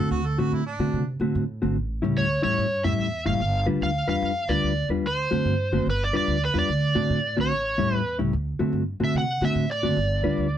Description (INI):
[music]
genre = blues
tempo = 146 BPM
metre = 4/4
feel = swing 65% on 8ths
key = D mixolydian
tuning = A4 = 437 Hz
[part]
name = warm harmonica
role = second line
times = 0.0-1.1 s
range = D4 to A4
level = -32 LUFS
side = right 2 dB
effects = overdrive
[part]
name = mellow electric guitar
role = riff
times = 0.0-10.5 s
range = A2 to B4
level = -25 LUFS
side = left 1 dB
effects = none
[part]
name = upright bass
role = bass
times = 0.0-10.6 s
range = F#1 to C3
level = -27 LUFS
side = right 1 dB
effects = none
[part]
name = overdriven slide guitar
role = melody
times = 2.2-10.6 s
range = B4 to F#5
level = -26 LUFS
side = right 1 dB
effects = none
[sound]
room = light reverb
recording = band playing live in one room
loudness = -22 LUFS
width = side -10 dB against mid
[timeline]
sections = 0.0-8.3 A section; 8.3-10.6 B section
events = electric slide guitar solo 8.3-10.6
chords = 0.0 D7; 1.8 A7; 3.4 G7; 5.0 D7; 5.9 G7; 6.7 D7; 7.5 A7; 8.3 D7; 10.0 G7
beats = | 0.11 0.52 0.94 1.35 | 1.76 2.17 2.58 2.99 | 3.40 3.82 4.23 4.64 | 5.05 5.46 5.87 6.28 | 6.69 7.10 7.51 7.92 | 8.33 8.74 9.15 9.56 | 9.97 10.38